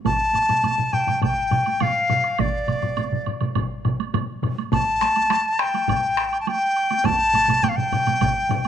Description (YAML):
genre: japanese traditional, taiko drum ensemble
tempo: 103 BPM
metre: 4/4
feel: straight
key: unclear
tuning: A4 = 440 Hz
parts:
  - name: taiko ensemble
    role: percussion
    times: 0.0-8.7 s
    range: none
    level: -30 LUFS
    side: right 11 dB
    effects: none
  - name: dizi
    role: melody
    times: 0.1-8.7 s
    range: D5 to A5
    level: -20 LUFS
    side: left 2 dB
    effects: none
  - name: solo taiko drums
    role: percussion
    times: 0.1-8.6 s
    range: none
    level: -27 LUFS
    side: left 6 dB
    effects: none
  - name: taiko ensemble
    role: percussion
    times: 0.1-8.6 s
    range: none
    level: -29 LUFS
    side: right 8 dB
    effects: none
  - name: taiko ensemble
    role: percussion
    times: 0.1-8.3 s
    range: none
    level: -32 LUFS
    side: right 3 dB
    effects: none
  - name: woodblock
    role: percussion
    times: 0.1-8.7 s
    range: none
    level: -33 LUFS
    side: right 12 dB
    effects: none
room: moderate plate reverb, RT60 2.6 s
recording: 1960s-style stereo with parts hard left and right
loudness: -19 LUFS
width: side -9 dB against mid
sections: 0.1-8.7 A section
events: none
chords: none